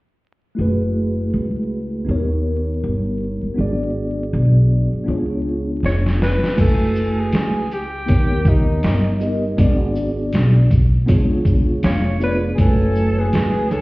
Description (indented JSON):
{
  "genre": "hip hop, jazz-hop",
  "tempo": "80 BPM",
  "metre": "4/4",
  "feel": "swing 58% on 16ths",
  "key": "F# minor",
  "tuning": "A4 = 440 Hz",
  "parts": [
    { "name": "mellow tine electric piano", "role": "accompaniment", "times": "0.5-13.7 s", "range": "A3 to G#5", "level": "-22 LUFS", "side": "equal", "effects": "medium stereo tremolo" },
    { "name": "upright bass", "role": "bass", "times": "0.6-13.8 s", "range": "E#1 to D#2", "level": "-19 LUFS", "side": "equal", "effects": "none" },
    { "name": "trip hop sampler-style drum kit", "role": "drums", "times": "5.8-13.8 s", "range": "crash cymbal, hi-hat, kick drum, shaker, snare drum", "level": "-18 LUFS", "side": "equal", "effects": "vintage 12-bit sampler grit" },
    { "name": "breathy alto saxophone", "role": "melody", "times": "5.9-13.8 s", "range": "D#4 to C#5", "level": "-24 LUFS", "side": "equal", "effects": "slapback echo, plate reverb" },
    { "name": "breathy mellow concert flute", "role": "second line", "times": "11.8-13.8 s", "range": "B4 to E#5", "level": "-30 LUFS", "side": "left 1 dB", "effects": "plate reverb" },
    { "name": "tube shaker and congas", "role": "percussion", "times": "12.6-13.8 s", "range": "none", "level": "-28 LUFS", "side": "right 2 dB", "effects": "none" }
  ],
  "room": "light reverb",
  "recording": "heard muffled through a wall, stone room reverb, vinyl crackle, EQ",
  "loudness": "-16 LUFS",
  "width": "side -21 dB against mid",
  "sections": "0.6-6.6 A section; 6.6-13.8 B section",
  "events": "drum fill 5.8-6.6",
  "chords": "0.6 F#m11; 2.1 D#7b13; 3.6 G#m7b5; 5.1 C#7b9; 6.6 F#m11; 8.1 D#7b13; 9.6 G#m7b5; 11.1 C#7b9; 12.6 F#m11",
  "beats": "| 0.58 1.33 2.08 2.83 | 3.58 4.33 5.08 5.83 | 6.58 7.33 8.08 8.83 | 9.58 10.33 11.08 11.83 | 12.58 13.33"
}